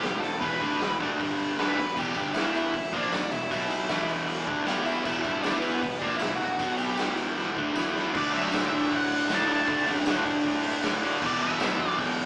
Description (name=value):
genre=garage rock duo or trio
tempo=156 BPM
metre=4/4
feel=straight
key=E minor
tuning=A4 = 441 Hz
part: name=octave-fuzz lead guitar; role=melody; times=0.0-12.3 s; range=B3 to A5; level=-30 LUFS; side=equal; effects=distortion
part: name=fuzz guitar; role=riff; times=0.0-12.3 s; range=E2 to E4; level=-27 LUFS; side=equal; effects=distortion
part: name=fuzz picked electric bass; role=bass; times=0.0-12.3 s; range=E1 to A2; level=-36 LUFS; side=equal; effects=overdrive
part: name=raw garage drum kit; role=drums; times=0.0-12.3 s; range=crash cymbal, hi-hat, kick drum, snare drum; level=-30 LUFS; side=equal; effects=none
part: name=tambourine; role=percussion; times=2.0-11.7 s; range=none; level=-46 LUFS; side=right 1 dB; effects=none
room=wet large studio reverb, RT60 0.7 s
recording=band playing live in one room, small speaker sound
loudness=-24 LUFS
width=side -30 dB against mid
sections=0.0-8.2 A section; 8.2-12.3 B section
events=drum fill 7.4-8.2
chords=0.0 E5; 1.2 G5; 1.6 Em; 3.5 B5; 3.9 Em; 6.6 B5; 7.0 E5; 8.2 D5; 11.2 Em